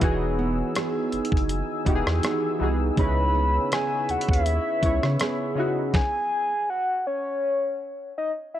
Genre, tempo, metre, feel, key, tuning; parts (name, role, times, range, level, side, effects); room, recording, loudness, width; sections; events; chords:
contemporary R&B; 81 BPM; 4/4; swing 54% on 16ths; C# minor; A4 = 440 Hz
warm analog keys; accompaniment; 0.0-6.0 s; C#3 to C#5; -28 LUFS; left 1 dB; chorus
deep dark ambient pad; sustained chords; 0.0-5.9 s; D#4 to E6; -34 LUFS; right 1 dB; chorus, built-in reverb
nylon-string guitar; arpeggios; 0.0-6.5 s; C#3 to G#4; -31 LUFS; right 5 dB; digital delay
saturated sub bass; bass; 0.0-5.2 s; E1 to C#3; -26 LUFS; equal
clean 12-bit digital drum machine; drums; 0.0-6.1 s; hi-hat, kick drum, rim click, snare drum; -25 LUFS; equal
soft octave-layered synth lead; melody; 3.0-8.6 s; C#5 to B5; -25 LUFS; left 2 dB; chorus
little or no reverb; worn, warbling old tape, cassette tape, warbly pitch drift; -22 LUFS; side -12 dB against mid
0.0-8.6 A section
stop 5.9-8.6
0.0 Emaj7; 3.0 C#m7; 5.9 N.C.